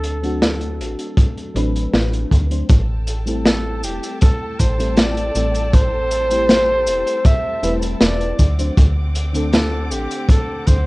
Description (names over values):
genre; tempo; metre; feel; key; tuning
vaporwave; 79 BPM; 4/4; straight; A dorian; A4 = 440 Hz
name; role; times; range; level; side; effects
clear flugelhorn; melody; 0.0-10.9 s; G4 to E5; -22 LUFS; equal; vintage 12-bit sampler grit, tape echo
mellow FM electric piano; accompaniment; 0.0-10.8 s; D3 to C5; -26 LUFS; left 1 dB; ensemble chorus, cassette tape
slap-like FM bass; bass; 0.0-10.9 s; E1 to D2; -21 LUFS; equal; none
crunchy breakbeat drum kit; drums; 0.0-10.8 s; cabasa, hi-hat, snare drum; -20 LUFS; equal; vintage 12-bit sampler grit
kick drum; drums; 1.2-10.8 s; none; -13 LUFS; equal; vintage 12-bit sampler grit
clear studio string section; sustained chords; 2.7-10.9 s; C4 to D6; -33 LUFS; equal; none
room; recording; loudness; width
studio reverb; rough home demo mix, cassette tape; -15 LUFS; side -22 dB against mid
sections
0.0-10.9 A section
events
none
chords
0.0 D7; 2.7 Am7; 8.4 D7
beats
0.42 1.18 1.94 | 2.70 3.46 4.21 4.97 | 5.73 6.49 7.25 8.01 | 8.77 9.53 10.29